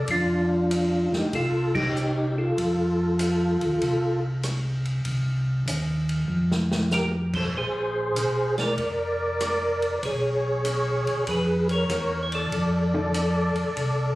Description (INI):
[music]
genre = soul jazz organ trio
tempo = 96 BPM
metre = 4/4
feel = swing 67% on 8ths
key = F mixolydian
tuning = A4 = 439 Hz
[part]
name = percussive tonewheel organ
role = melody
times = 0.0-14.2 s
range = D4 to D5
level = -25 LUFS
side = equal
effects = slow rotary speaker, chorus vibrato
[part]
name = mellow tonewheel organ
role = bass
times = 0.0-14.2 s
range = F1 to F2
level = -26 LUFS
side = equal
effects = slow rotary speaker
[part]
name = vintage drum kit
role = drums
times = 0.1-14.0 s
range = crash cymbal, hi-hat, kick drum, ride cymbal, rim click, snare drum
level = -32 LUFS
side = equal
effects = none
[part]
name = hollow-body jazz guitar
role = accompaniment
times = 12.9-13.1 s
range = F3 to D5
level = -29 LUFS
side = equal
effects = none
[sound]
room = light reverb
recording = recorded on a phone in the room, studio reverb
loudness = -22 LUFS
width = side -18 dB against mid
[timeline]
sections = 0.0-14.2 A section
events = band accent 1.6-1.9; drum fill 6.3-6.9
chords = 0.0 F13; 5.0 Cm; 6.3 Fsus2; 7.5 Bb9; 10.0 Bsus2; 12.5 F6